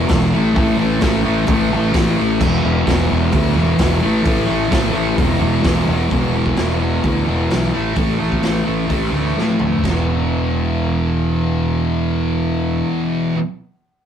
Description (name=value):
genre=garage rock duo or trio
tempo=129 BPM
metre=4/4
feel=straight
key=unclear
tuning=A4 = 441 Hz
part: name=thick fuzz guitar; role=riff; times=0.0-13.4 s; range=E2 to A3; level=-18 LUFS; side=equal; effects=distortion
part: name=fuzz fingered electric bass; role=bass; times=0.0-12.8 s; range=E1 to A2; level=-19 LUFS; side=equal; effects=overdrive, tube saturation
part: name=raw garage drum kit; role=drums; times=0.1-10.0 s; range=crash cymbal, hi-hat, kick drum, ride cymbal, snare drum, toms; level=-21 LUFS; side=equal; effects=none
room=moderate studio reverb, RT60 0.5 s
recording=rough rehearsal-room recording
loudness=-15 LUFS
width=side -8 dB against mid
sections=0.0-6.1 A section; 6.1-9.8 B section; 9.8-13.6 C section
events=drum fill 9.4-9.8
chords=0.3 A5; 2.4 E5; 4.0 A5; 5.2 E5; 7.7 A5; 9.8 E5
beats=0.09 | 0.55 1.02 1.48 1.94 | 2.40 2.86 3.32 3.79 | 4.25 4.71 5.17 5.64 | 6.10 6.57 7.03 7.50 | 7.96 8.43 8.89 9.36 | 9.83 10.29 10.76 11.23 | 11.69 12.16 12.62 13.09